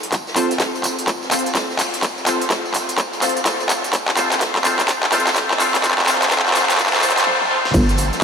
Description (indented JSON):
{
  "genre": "bass house",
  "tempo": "126 BPM",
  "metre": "4/4",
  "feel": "swing 62% on 16ths",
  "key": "unclear",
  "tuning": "A4 = 440 Hz",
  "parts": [
    { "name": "big-room dance drum kit", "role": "drums", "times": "0.0-8.2 s", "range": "crash cymbal, handclaps, hi-hat, snare drum, tambourine, toms", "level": "-18 LUFS", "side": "equal", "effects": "small room ambience" },
    { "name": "swinging big-band drum kit", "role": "drums", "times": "0.0-8.2 s", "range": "hi-hat, snare drum, tambourine", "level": "-28 LUFS", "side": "equal", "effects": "high-pass filter on hats, small room ambience, high-pass filter on snare, high-pass filter on perc, high-pass filter on room" },
    { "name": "electronic kick drum", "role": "drums", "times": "0.1-7.9 s", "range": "none", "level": "-22 LUFS", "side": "equal", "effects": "high-pass filter on kick, small room ambience" },
    { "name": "band-passed chord stab", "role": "stabs", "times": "0.4-7.7 s", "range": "C4 to C5", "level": "-22 LUFS", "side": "left 1 dB", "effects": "phaser, sidechain pumping, ping-pong delay" },
    { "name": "hollow knocking FM bass", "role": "bass", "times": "7.7-8.1 s", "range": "G1", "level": "-17 LUFS", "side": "equal", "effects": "overdrive, sidechain pumping" }
  ],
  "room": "wet huge ambient reverb, RT60 6.4 s",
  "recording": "dreamy mix soaked in reverb, high-pass filter",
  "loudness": "-15 LUFS",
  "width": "side -6 dB against mid",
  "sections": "0.0-7.7 A section",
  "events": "build-up 0.0-7.7; drum fill 0.0-7.3, 7.3-7.7; filter sweep on synth stab 0.0-7.7; break 7.3-7.7",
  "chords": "0.1 F/C"
}